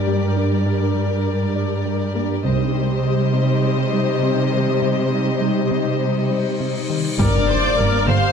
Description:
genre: cinematic, hybrid orchestral and electronic film score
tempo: 101 BPM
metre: 4/4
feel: straight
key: G minor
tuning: A4 = 442 Hz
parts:
  - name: warm symphonic violin section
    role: second line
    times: 0.0-8.3 s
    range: Bb4 to F5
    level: -24 LUFS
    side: left 5 dB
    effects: none
  - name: warm studio viola section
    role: accompaniment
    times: 0.0-8.3 s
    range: G3 to C5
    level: -26 LUFS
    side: right 2 dB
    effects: none
  - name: hollow soft pad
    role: sustained chords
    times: 0.0-8.3 s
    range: G3 to C5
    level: -25 LUFS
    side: left 2 dB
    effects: chorus
  - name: warm symphonic cello section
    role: bass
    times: 0.0-8.2 s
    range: G2 to C3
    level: -21 LUFS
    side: right 2 dB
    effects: none
  - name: tight sequenced synth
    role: arpeggios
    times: 0.1-8.3 s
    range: C3 to D4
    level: -27 LUFS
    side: left 1 dB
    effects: chorus, tape echo
  - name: warm symphonic double bass section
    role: bass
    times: 2.4-3.0, 7.2-8.2 s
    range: G1 to C2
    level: -23 LUFS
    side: right 2 dB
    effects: none
  - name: cymbal swell and impact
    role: sound effects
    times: 6.4-8.3 s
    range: none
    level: -26 LUFS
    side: left 2 dB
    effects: none
  - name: warm symphonic violin section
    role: melody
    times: 7.2-8.3 s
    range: D6 to F6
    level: -27 LUFS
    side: left 2 dB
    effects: none
  - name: mellow French horn section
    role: sustained chords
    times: 7.2-8.3 s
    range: Bb3 to D4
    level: -28 LUFS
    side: left 6 dB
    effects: none
room: moderate scoring stage reverb, RT60 1.6 s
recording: dark, warm production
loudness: -17 LUFS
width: side -6 dB against mid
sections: 0.0-7.2 A section; 7.2-8.3 B section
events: cymbal swell 6.4-7.2; impact 7.2-8.3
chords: 0.0 Gm; 2.4 Cm; 7.2 Gm

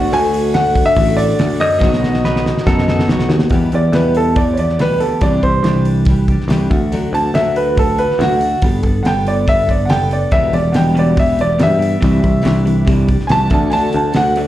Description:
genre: folk rock and heartland rock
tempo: 141 BPM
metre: 4/4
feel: straight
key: E minor from 3.5 s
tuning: A4 = 439 Hz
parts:
  - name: warm grand piano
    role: melody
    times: 0.0-14.4 s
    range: F#4 to A5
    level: -17 LUFS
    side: right 1 dB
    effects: slapback echo
  - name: picked steel-string acoustic guitar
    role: accompaniment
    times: 0.0-14.5 s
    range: E2 to A4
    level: -20 LUFS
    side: left 3 dB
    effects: slapback echo
  - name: electric guitar through a small old amp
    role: riff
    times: 0.0-3.5, 10.3-14.5 s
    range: E2 to F#4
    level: -22 LUFS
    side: equal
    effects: slapback echo
  - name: picked electric bass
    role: bass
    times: 0.0-14.5 s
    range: E1 to G2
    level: -17 LUFS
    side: right 1 dB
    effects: none
  - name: damped 70s drum kit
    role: drums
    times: 0.1-14.5 s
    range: hi-hat, kick drum, snare drum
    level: -18 LUFS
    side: equal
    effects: none
  - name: pedal steel guitar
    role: second line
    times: 2.2-3.3 s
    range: F#4 to B4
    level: -24 LUFS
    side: right 1 dB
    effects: slapback echo
room: light reverb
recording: live gig heard through the venue's PA, club reverb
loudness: -12 LUFS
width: side -13 dB against mid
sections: 0.0-3.5 A section; 3.5-14.5 B section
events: drum fill 1.8-3.5; grand piano solo 3.5-14.5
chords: 0.0 D; 1.8 B; 3.5 Em; 5.2 Cadd9; 6.7 D; 8.6 Gadd9; 10.3 Em; 12.0 Cadd9; 13.5 D

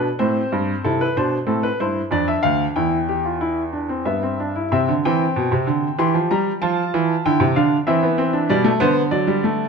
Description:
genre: classical, baroque-style 3-part fugue for grand piano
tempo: 94 BPM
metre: 3/4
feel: straight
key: C major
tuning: A4 = 440 Hz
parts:
  - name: clear baby grand piano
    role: solo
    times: 0.0-9.7 s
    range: D2 to C6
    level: -17 LUFS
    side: equal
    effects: none
room: moderate recital hall reverb, RT60 1.4 s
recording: close, detailed microphones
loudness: -17 LUFS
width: side -5 dB against mid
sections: 0.8-4.7 A section; 4.7-9.7 B section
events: none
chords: 0.2 Am; 0.8 C; 2.1 Dm/F; 2.8 C/E (rootless); 4.0 G; 4.7 C; 6.0 C7/E; 6.6 F; 7.9 C/E; 8.5 G/B

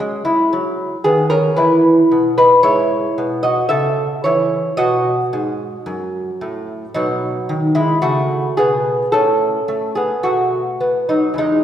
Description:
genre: classical, baroque-style dance for lute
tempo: 56 BPM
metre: 3/4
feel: rubato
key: unclear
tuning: A4 = 440 Hz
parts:
  - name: lute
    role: solo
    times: 0.0-11.6 s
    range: E2 to E5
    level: -14 LUFS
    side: equal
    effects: none
room: wet concert hall reverb, RT60 1.9 s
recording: recorded in a church or concert hall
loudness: -14 LUFS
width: side -10 dB against mid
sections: 0.0-11.6 A section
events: none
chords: 0.0 C#m; 1.6 E; 3.7 A/C#; 4.8 B; 8.0 C#5; 9.1 Amaj9; 10.2 B5

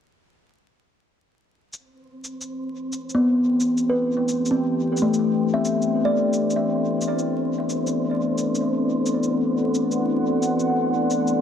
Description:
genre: ambient dub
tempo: 88 BPM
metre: 4/4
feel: straight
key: A dorian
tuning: A4 = 440 Hz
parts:
  - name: deep dark ambient pad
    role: sustained chords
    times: 3.4-11.4 s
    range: E4 to G5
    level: -23 LUFS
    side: left 2 dB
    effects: chorus, built-in reverb
  - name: cabasa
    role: drums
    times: 1.7-11.4 s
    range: none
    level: -35 LUFS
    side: left 1 dB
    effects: dub echo
  - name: wind-like tuned noise texture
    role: texture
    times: 2.2-11.4 s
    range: C4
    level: -28 LUFS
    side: right 2 dB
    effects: built-in reverb
  - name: kalimba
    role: arpeggios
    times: 3.1-7.6 s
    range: A3 to E5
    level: -22 LUFS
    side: left 1 dB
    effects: low-pass filter, tape echo
room: moderate echo chamber reverb, RT60 2.4 s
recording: dark, warm production, vinyl crackle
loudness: -20 LUFS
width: side -8 dB against mid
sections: 1.7-11.4 A section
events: filter sweep on ambient pad 1.7-11.4; filter sweep on kalimba 1.7-11.4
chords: 1.7 Am9; 7.2 D7

